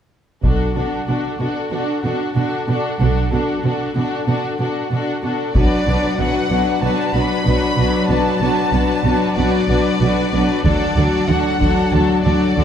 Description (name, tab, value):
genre	cinematic, epic orchestral film score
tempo	94 BPM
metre	4/4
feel	straight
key	B minor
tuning	A4 = 442 Hz
part	rich symphonic violin section	second line	0.4-12.6 s	F#4 to B4	-24 LUFS	left 2 dB	none
part	warm symphonic viola section	accompaniment	0.4-12.6 s	F#3 to D4	-22 LUFS	equal	none
part	dark symphonic cello section	bass	0.4-12.6 s	B2 to D3	-22 LUFS	right 2 dB	none
part	rich symphonic double bass section	bass	0.4-12.6 s	B1 to D2	-21 LUFS	right 2 dB	none
part	taiko ensemble	drums	0.4-1.7, 5.5-6.8, 10.6-11.9 s	none	-22 LUFS	equal	none
part	warm symphonic violin section	melody	0.5-12.6 s	A4 to B5	-24 LUFS	left 3 dB	none
part	dark French horn section	sustained chords	5.5-12.6 s	F#3 to D4	-23 LUFS	left 5 dB	none
room	moderate concert hall reverb, RT60 2.2 s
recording	dark, warm production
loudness	-15 LUFS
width	side -9 dB against mid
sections	0.4-5.6 A section; 5.6-12.6 B section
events	none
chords	0.4 Bm7; 10.7 D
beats	| 0.44 1.08 1.72 2.36 | 3.00 3.64 4.28 4.92 | 5.55 6.19 6.83 7.47 | 8.10 8.74 9.38 10.02 | 10.65 11.29 11.93 12.56